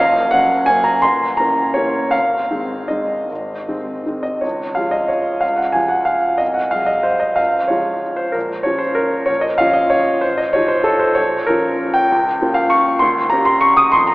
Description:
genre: classical, piano waltz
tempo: 146-212 BPM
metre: 3/4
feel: rubato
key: Db major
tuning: A4 = 438 Hz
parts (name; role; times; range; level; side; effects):
- clear grand piano; solo; 0.0-14.1 s; Gb1 to Eb6; -14 LUFS; equal; none
room: wet church reverb, RT60 3.6 s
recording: AM radio sound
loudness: -14 LUFS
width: side -20 dB against mid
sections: 0.0-4.4 A section; 4.4-14.1 B section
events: none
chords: 0.0 Gb; 1.0 Gdim7; 2.1 Ab; 4.4 Db; 6.4 Ab7/C; 7.4 Db; 8.4 Bbm; 10.2 F7/A; 11.2 Bbm; 12.1 Bbm/Db; 13.0 Eb7

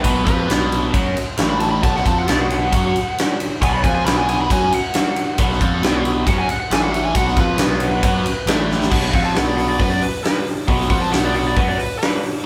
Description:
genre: blues rock power trio and southern rock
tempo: 136 BPM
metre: 4/4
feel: straight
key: unclear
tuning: A4 = 440 Hz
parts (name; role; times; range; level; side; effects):
- overdriven slide guitar; melody; 0.0-12.2 s; B4 to B5; -25 LUFS; equal; none
- raw garage guitar; riff; 0.0-11.8 s; A2 to F#4; -24 LUFS; equal; overdrive, phaser
- growling picked electric bass; bass; 0.0-11.8 s; A1 to F#2; -26 LUFS; equal; overdrive
- big rock drum kit; drums; 0.0-12.3 s; crash cymbal, hi-hat, kick drum, ride cymbal, snare drum; -21 LUFS; equal; none
room: moderate large studio reverb, RT60 1.2 s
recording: band playing live in one room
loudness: -18 LUFS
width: mono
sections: 0.0-8.9 A section; 8.9-12.5 A section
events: electric slide guitar solo 0.0-8.9, 8.9-12.5; drum fill 8.7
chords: 0.0 B5; 1.4 A5; 1.8 B5; 6.7 A5; 7.2 B5; 8.5 A5; 8.9 B5

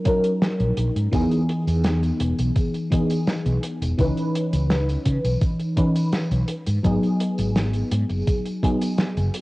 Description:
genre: vaporwave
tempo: 84 BPM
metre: 4/4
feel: straight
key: G# minor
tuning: A4 = 440 Hz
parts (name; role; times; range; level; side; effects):
- mellow FM electric piano; accompaniment; 0.0-9.4 s; E3 to B4; -23 LUFS; equal; phaser, ensemble chorus, cassette tape, analog delay
- electronic kick drum; drums; 0.1-8.8 s; none; -22 LUFS; equal; vintage 12-bit sampler grit, studio reverb
- warm soul drum kit; drums; 0.1-9.4 s; hi-hat, snare drum, tambourine; -27 LUFS; equal; vintage 12-bit sampler grit, studio reverb
- mellow fretless electric bass; bass; 0.6-9.3 s; E1 to C#3; -22 LUFS; equal; none
room: light reverb, small room ambience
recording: home recording on cassette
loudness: -20 LUFS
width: side -20 dB against mid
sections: 0.0-9.4 A section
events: none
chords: 0.0 D#m7; 1.1 Emaj7; 4.0 C#m9; 6.5 G#m7

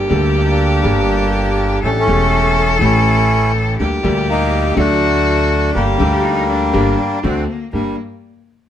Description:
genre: tango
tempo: 122 BPM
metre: 4/4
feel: rubato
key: G harmonic minor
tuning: A4 = 438 Hz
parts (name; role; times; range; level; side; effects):
- clear cello; second line; 0.0-8.0 s; Bb3 to A4; -20 LUFS; left 3 dB; none
- bright grand piano; accompaniment; 0.0-7.9 s; E1 to A4; -19 LUFS; left 2 dB; none
- bandoneon; stabs; 0.0-7.9 s; A3 to D5; -29 LUFS; right 4 dB; none
- upright bass; bass; 0.0-7.9 s; E1 to D2; -18 LUFS; right 1 dB; none
- bandoneon; melody; 0.4-8.0 s; G3 to E4; -18 LUFS; equal; none
room: light reverb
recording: close, detailed microphones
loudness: -13 LUFS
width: side -10 dB against mid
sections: 0.0-7.7 A section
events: none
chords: 0.0 Gmadd9; 1.8 A7; 3.8 Gm/D; 4.8 D; 5.7 Gm; 7.2 D7; 7.7 Gm

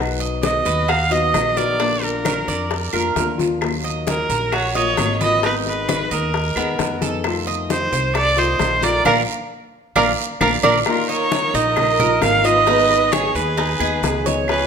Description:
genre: latin, Cuban son and guajira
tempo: 132 BPM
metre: 4/4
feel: straight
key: Eb minor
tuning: A4 = 440 Hz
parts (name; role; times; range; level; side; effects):
- flamenco guitar; accompaniment; 0.0-14.7 s; B2 to Ab4; -25 LUFS; left 6 dB; none
- Cuban tres; arpeggios; 0.0-14.7 s; Cb4 to D#5; -23 LUFS; right 5 dB; none
- upright bass; bass; 0.0-14.7 s; Ab1 to F2; -26 LUFS; equal; none
- congas; percussion; 0.2-14.7 s; none; -28 LUFS; left 3 dB; none
- clear erhu; melody; 0.4-14.7 s; Bb4 to F5; -20 LUFS; right 2 dB; none
- bongos; percussion; 0.4-14.7 s; none; -28 LUFS; left 7 dB; none
- guiro; percussion; 0.4-14.7 s; none; -32 LUFS; right 8 dB; none
- claves; percussion; 0.9-14.7 s; none; -30 LUFS; right 2 dB; none
- warm studio violin section; second line; 10.9-14.7 s; F4 to Cb5; -23 LUFS; right 3 dB; none
room: wet large studio reverb, RT60 1.3 s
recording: none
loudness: -16 LUFS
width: side -6 dB against mid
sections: 0.0-10.9 A section; 10.9-14.7 B section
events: band accent 9.1-10.9; drum fill 10.2-10.9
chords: 0.0 B; 1.8 Bb; 3.6 Ebmadd9; 5.4 Abm; 7.2 F7; 9.1 Bb; 10.9 Ebsus2; 12.7 Abm

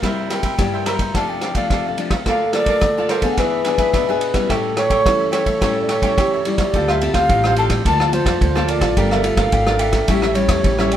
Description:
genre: samba and choro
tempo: 107 BPM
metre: 4/4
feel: straight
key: D minor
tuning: A4 = 441 Hz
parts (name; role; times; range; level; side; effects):
- baroque flute; melody; 0.0-11.0 s; C5 to Bb5; -21 LUFS; equal; none
- cavaquinho; accompaniment; 0.0-11.0 s; D4 to A5; -25 LUFS; right 2 dB; none
- nylon-string guitar; accompaniment; 0.0-11.0 s; G2 to Bb4; -24 LUFS; left 4 dB; none
- vintage drum kit; drums; 0.0-11.0 s; kick drum, ride cymbal, rim click; -21 LUFS; equal; none
- soft octave-layered synth lead; second line; 2.3-11.0 s; F4 to B4; -22 LUFS; right 1 dB; chorus
- upright bass; bass; 6.7-11.0 s; G1 to F2; -21 LUFS; equal; none
room: light reverb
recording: band playing live in one room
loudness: -15 LUFS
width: side -10 dB against mid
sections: 0.0-6.7 A section; 6.7-11.0 B section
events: none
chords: 0.0 C7; 1.1 F6/C; 2.3 Bbmaj7/D; 3.4 E7; 4.5 A7; 6.7 Dm7; 7.9 Bbmaj7/D; 9.0 Gm7; 10.1 A7

